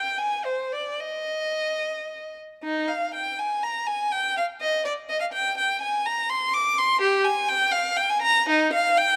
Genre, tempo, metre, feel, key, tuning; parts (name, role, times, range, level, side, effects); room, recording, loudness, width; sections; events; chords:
classical, baroque-style suite movement for unaccompanied violin; 69-85 BPM (dotted quarters); 6/8; rubato; Eb major; A4 = 440 Hz
rich violin; solo; 0.0-9.2 s; Eb4 to D6; -24 LUFS; equal
light reverb; close, detailed microphones; -24 LUFS; mono
0.0-2.6 A section; 2.6-9.2 B section